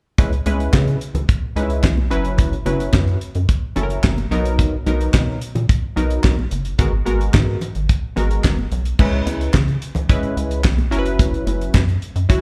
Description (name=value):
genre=early-eighties boogie funk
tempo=109 BPM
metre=4/4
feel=straight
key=C# dorian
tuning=A4 = 439 Hz
part: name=funky polysynth comp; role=accompaniment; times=0.2-12.4 s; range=F#3 to B4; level=-26 LUFS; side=equal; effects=chorus
part: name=rubbery square bass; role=bass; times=0.2-12.3 s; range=F#1 to C#3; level=-22 LUFS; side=equal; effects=none
part: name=damped 70s drum kit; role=drums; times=0.2-12.4 s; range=crash cymbal, handclaps, hi-hat, kick drum, snare drum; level=-20 LUFS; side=equal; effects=none
part: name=congas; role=percussion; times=0.2-11.9 s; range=none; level=-32 LUFS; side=equal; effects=none
room=little or no reverb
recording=live gig heard through the venue's PA, club reverb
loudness=-19 LUFS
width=mono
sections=0.2-9.0 A section; 9.0-12.4 B section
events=none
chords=0.2 C#m7; 2.1 F#7sus4; 4.3 Bmaj7; 6.8 G#m9; 9.0 C#m7; 10.9 F#7sus4